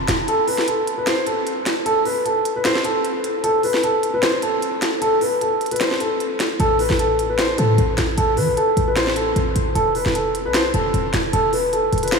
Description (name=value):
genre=hip hop, trap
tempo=152 BPM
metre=4/4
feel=half-time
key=A minor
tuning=A4 = 439 Hz
part: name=dark concert grand piano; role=melody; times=0.0-12.2 s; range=A4 to A5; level=-19 LUFS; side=equal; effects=analog delay
part: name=short 808-style bass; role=bass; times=0.0-0.3, 6.6-12.2 s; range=E1 to E3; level=-22 LUFS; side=equal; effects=none
part: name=trap drum kit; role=drums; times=0.1-12.2 s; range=finger snaps, hi-hat, snare drum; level=-23 LUFS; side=equal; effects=none
room=wet cathedral reverb, RT60 5.3 s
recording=dreamy mix soaked in reverb, studio reverb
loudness=-17 LUFS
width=side -4 dB against mid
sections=0.3-12.2 A section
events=kick muted 0.3-6.6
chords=0.3 N.C.; 6.6 A5; 9.8 Esus4